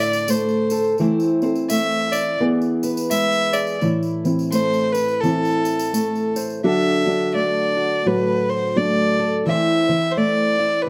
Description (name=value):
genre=acoustic folk duo or small band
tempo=85 BPM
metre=4/4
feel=swing 60% on 8ths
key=A minor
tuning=A4 = 440 Hz
part: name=dark fiddle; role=melody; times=0.0-10.9 s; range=A4 to E5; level=-23 LUFS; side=equal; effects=plate reverb
part: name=fingerpicked old ladder-braced acoustic guitar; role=accompaniment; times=0.0-10.9 s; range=A2 to C5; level=-24 LUFS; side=equal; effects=none
part: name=felt-muted upright piano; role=arpeggios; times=0.0-10.9 s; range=E3 to A4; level=-26 LUFS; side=equal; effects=none
part: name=tambourine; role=percussion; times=0.0-6.6 s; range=none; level=-36 LUFS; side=equal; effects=none
room=moderate studio ambience, RT60 0.5 s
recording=none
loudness=-20 LUFS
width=mono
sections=0.0-6.7 A section; 6.7-10.9 B section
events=none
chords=0.0 Dsus2; 1.0 Am/E; 2.4 E; 3.8 Am; 6.7 D; 9.5 Am/E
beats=0.28 | 0.98 1.70 2.40 3.11 | 3.82 4.53 5.24 5.95 | 6.65 7.36 8.06 8.77 | 9.47 10.18 10.88